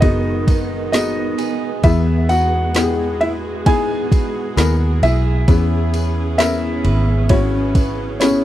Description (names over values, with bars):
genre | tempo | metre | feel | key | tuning
pop ballad | 66 BPM | 4/4 | straight | unclear | A4 = 439 Hz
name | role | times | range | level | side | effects
warm grand piano | melody | 0.0-8.4 s | C#4 to G#5 | -21 LUFS | equal | none
felt-muted upright piano | accompaniment | 0.0-8.4 s | B2 to A#4 | -22 LUFS | left 6 dB | none
warm studio string section | sustained chords | 0.0-8.4 s | C#3 to G#4 | -26 LUFS | right 3 dB | none
picked steel-string acoustic guitar | arpeggios | 0.0-8.4 s | B2 to B4 | -29 LUFS | right 19 dB | none
vintage muted fingered electric bass | bass | 0.0-8.4 s | F#1 to E2 | -19 LUFS | equal | none
smooth R&B drum kit | drums | 0.0-8.4 s | kick drum, ride cymbal, snare drum | -15 LUFS | equal | none
tambourine | percussion | 0.0-8.4 s | none | -35 LUFS | left 6 dB | none
room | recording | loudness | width
light reverb | dry, close 1970s-style studio recording | -14 LUFS | side -13 dB against mid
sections
0.0-8.4 A section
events
none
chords
0.0 B6; 1.8 Emaj7; 5.5 C#m7